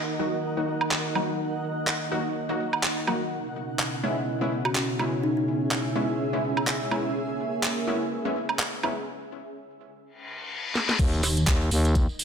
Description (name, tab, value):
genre	bass house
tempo	125 BPM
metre	4/4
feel	swing 57% on 16ths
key	unclear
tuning	A4 = 440 Hz
part	dark analog pad	sustained chords	0.0-9.1 s	Cb4 to Gb5	-33 LUFS	equal	chorus, sidechain pumping
part	granular cloud pad	texture	0.0-12.2 s	Db4 to Gb5	-31 LUFS	right 1 dB	built-in reverb, sidechain pumping
part	orchestra-hit-like synth stab	stabs	0.2-9.0 s	Gb3 to Gb4	-31 LUFS	left 1 dB	built-in reverb, sidechain pumping, ping-pong delay
part	garage drum kit	drums	0.8-12.2 s	crash cymbal, handclaps, hi-hat, snare drum, woodblock	-28 LUFS	right 2 dB	low-pass filter on snare, studio reverb, low-pass filter on perc, low-pass filter on hats, low-pass filter on cymbals
part	kalimba	melody	4.7-5.4 s	Eb4 to Gb4	-33 LUFS	left 2 dB	ping-pong delay
part	reverse cymbal and impact	sound effects	10.2-12.2 s	none	-32 LUFS	left 3 dB	none
part	growling FM bass	bass	11.0-12.1 s	Eb2	-23 LUFS	equal	overdrive, sidechain pumping
part	electronic kick drum	drums	11.0-12.1 s	none	-23 LUFS	equal	studio reverb
part	tambourine	percussion	11.0-12.2 s	none	-34 LUFS	right 4 dB	none
part	pulsing pluck wobble bass	bass	11.2-11.5 s	Eb2	-23 LUFS	equal	chorus, sidechain pumping
room	moderate lush hall reverb, RT60 1.7 s, digital ambience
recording	none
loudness	-24 LUFS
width	side -7 dB against mid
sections	0.0-11.0 A section; 11.0-12.2 B section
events	break 9.1-11.0; reverse cymbal 10.2-11.0; drum fill 10.8; drop 11.0-12.2; impact 11.0-12.2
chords	0.0 Ebm; 3.3 Dbm7; 11.0 Ebm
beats	0.43 0.91 | 1.39 1.87 2.35 2.83 | 3.31 3.79 4.27 4.75 | 5.23 5.71 6.19 6.67 | 7.15 7.63 8.11 8.59 | 9.07 9.55 10.03 10.51 | 10.99 11.47 11.95